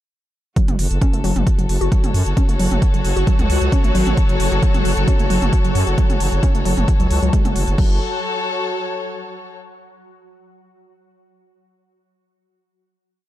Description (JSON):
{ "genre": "driving peak-time techno", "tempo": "133 BPM", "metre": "4/4", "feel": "straight", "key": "F# minor", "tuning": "A4 = 440 Hz", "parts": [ { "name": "warbly dusty pluck", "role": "riff", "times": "0.6-8.0 s", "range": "F#3 to F#4", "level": "-25 LUFS", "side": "equal", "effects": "chorus, tube saturation, sidechain pumping, dub echo" }, { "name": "swarming drone", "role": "drone", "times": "1.7-7.8 s", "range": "F#3 to F#4", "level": "-28 LUFS", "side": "left 1 dB", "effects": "built-in reverb, phaser, sidechain pumping" }, { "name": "electronic kick drum", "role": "drums", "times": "0.6-7.9 s", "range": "none", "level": "-17 LUFS", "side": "equal", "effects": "overdrive" }, { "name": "techno drum kit", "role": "drums", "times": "0.6-7.9 s", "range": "crash cymbal, hi-hat, toms", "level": "-28 LUFS", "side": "right 2 dB", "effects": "none" }, { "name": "warm studio string section", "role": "texture", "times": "0.6-9.5 s", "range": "F#4 to C#5", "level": "-25 LUFS", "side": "left 3 dB", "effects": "sidechain pumping" }, { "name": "growling FM bass", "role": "bass", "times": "0.7-8.0 s", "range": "F#1 to F#2", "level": "-19 LUFS", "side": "equal", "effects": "sidechain pumping" } ], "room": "little or no reverb", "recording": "dark, warm production", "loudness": "-15 LUFS", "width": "side -13 dB against mid", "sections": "0.6-7.8 groove; 7.8-9.6 final chord", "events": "none", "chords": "0.6 F#m", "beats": "| 0.56 1.01 1.47 1.92 | 2.37 2.82 3.27 3.72 | 4.17 4.62 5.08 5.53 | 5.98 6.43 6.88 7.33 | 7.78 8.23 8.69 9.14" }